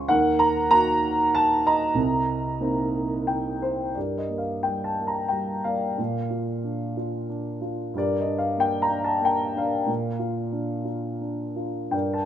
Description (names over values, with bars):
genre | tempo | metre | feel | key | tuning
classical, lyrical solo piano | 84-98 BPM | 3/4 | rubato | G minor from 4.0 s | A4 = 439 Hz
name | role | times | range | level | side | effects
dark grand piano | solo | 0.0-12.3 s | C2 to Db6 | -22 LUFS | equal | none
room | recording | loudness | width
light reverb | close, detailed microphones | -22 LUFS | side -10 dB against mid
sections
0.0-4.0 A section; 4.0-12.3 B section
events
grand piano fill 2.9-4.0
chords
0.1 Ebm; 2.0 Cm7; 4.0 Gm; 6.0 Bb; 7.9 Gm; 9.9 Bb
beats
| 0.10 0.71 1.33 | 1.96 2.61 3.27 | 3.96 4.66 5.33 | 5.99 6.66 7.31 | 7.95 8.58 9.23 | 9.89 10.54 11.23 | 11.94